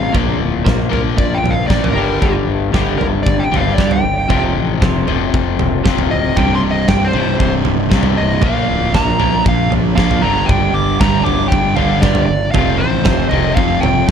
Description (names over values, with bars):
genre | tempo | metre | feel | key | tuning
quiet-loud alternative rock | 116 BPM | 4/4 | straight | unclear | A4 = 440 Hz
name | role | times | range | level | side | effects
dark smooth lead guitar | melody | 0.0-14.1 s | Bb4 to D6 | -20 LUFS | equal | overdrive, tape echo
twelve-string electric guitar | arpeggios | 0.0-14.1 s | C2 to Bb3 | -24 LUFS | right 8 dB | wide subtle chorus, tape echo
crunchy overdriven guitar | riff | 0.0-14.1 s | C2 to Bb3 | -19 LUFS | left 13 dB | none
fuzz fingered electric bass | bass | 0.0-14.1 s | C1 to G2 | -20 LUFS | equal | overdrive
big rock drum kit | drums | 0.1-14.1 s | kick drum, snare drum, toms | -17 LUFS | equal | none
thick fuzz guitar | riff | 6.4-14.1 s | C2 to Bb3 | -20 LUFS | right 12 dB | distortion
room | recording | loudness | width
small room ambience | none | -12 LUFS | side -8 dB against mid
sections
0.0-14.1 A section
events
lead electric guitar solo 0.0-14.1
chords
0.2 Bb; 2.0 G5; 4.3 F5; 6.4 C5; 8.4 Bb; 10.2 G5; 12.5 F